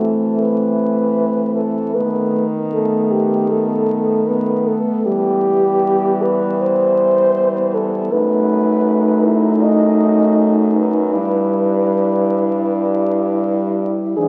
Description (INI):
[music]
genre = classical, lyrical piece for horn quartet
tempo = 78 BPM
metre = 4/4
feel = rubato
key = E minor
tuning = A4 = 439 Hz
[part]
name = mellow French horn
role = melody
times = 0.0-14.3 s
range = E4 to D#5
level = -20 LUFS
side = equal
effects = none
[part]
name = mellow French horn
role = second line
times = 0.0-14.3 s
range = B3 to E4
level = -24 LUFS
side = equal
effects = none
[part]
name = dark French horn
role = accompaniment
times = 0.0-14.3 s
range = E3 to A3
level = -21 LUFS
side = equal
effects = none
[part]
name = clear French horn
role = bass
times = 0.0-14.3 s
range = F#2 to E3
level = -25 LUFS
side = equal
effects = none
[sound]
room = wet concert hall reverb, RT60 2.2 s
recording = very old 78 rpm record, vinyl crackle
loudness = -16 LUFS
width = mono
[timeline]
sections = 0.0-14.3 A section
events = none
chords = 0.0 F#m7b5/E (rootless); 2.0 B7/D#; 5.1 Em; 8.1 B7/F#; 11.1 Em/G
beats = 0.39 1.17 | 1.96 2.74 3.51 4.29 | 5.06 5.84 6.61 7.38 | 8.13 8.88 9.64 10.39 | 11.14 11.90 12.66 13.43 | 14.18